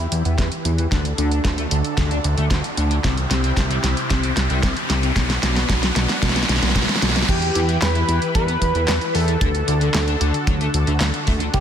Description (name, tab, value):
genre	synthwave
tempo	113 BPM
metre	4/4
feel	straight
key	E minor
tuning	A4 = 440 Hz
part	analog string pad	sustained chords	0.0-11.6 s	C3 to B4	-27 LUFS	equal	ensemble chorus, sidechain pumping
part	overdriven semi-hollow guitar	riff	0.0-11.6 s	B2 to E4	-28 LUFS	left 2 dB	analog chorus, low-pass filter, ping-pong delay
part	fat analog bass	bass	0.0-11.6 s	B1 to E2	-21 LUFS	equal	none
part	riser	sound effects	0.5-7.3 s	none	-28 LUFS	right 1 dB	none
part	pop drum kit	drums	0.1-11.6 s	crash cymbal, handclaps, hi-hat, snare drum	-23 LUFS	equal	small room ambience
part	kick drum	drums	0.4-11.6 s	none	-24 LUFS	equal	small room ambience
part	wide unison lead	melody	7.3-11.6 s	G4 to B4	-24 LUFS	right 1 dB	analog chorus, ping-pong delay
part	FM electric piano with soft pad layer	second line	7.3-11.6 s	G5 to B5	-32 LUFS	right 2 dB	chorus, vintage 12-bit sampler grit, ping-pong delay
room	light reverb, digital ambience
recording	dense, heavily limited modern master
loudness	-17 LUFS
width	side -9 dB against mid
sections	0.0-7.3 A section; 7.3-11.6 B section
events	drum fill 0.0-7.3; riser 0.5-7.3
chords	0.0 Em; 0.9 D; 3.0 C; 5.2 Bm; 7.3 Em; 9.4 D